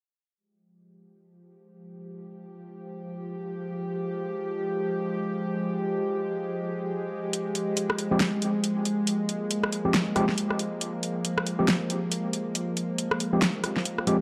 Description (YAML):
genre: deep dubstep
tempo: 138 BPM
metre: 4/4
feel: swing 59% on 16ths, half-time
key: F minor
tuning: A4 = 439 Hz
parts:
  - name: bowed-like drone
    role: sustained chords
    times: 1.9-14.2 s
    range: F3 to G4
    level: -32 LUFS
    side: equal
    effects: built-in reverb
  - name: deep house drum kit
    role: drums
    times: 7.3-14.2 s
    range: hi-hat, rim click, snare drum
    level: -30 LUFS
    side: equal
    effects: none
  - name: overdriven tine electric piano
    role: stabs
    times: 8.1-14.2 s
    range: F3 to G4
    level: -31 LUFS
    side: equal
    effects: dub echo
room: moderate echo chamber reverb, RT60 2.3 s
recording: dark, warm production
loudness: -28 LUFS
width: mono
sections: 0.4-14.2 A section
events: none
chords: 0.4 Fmadd9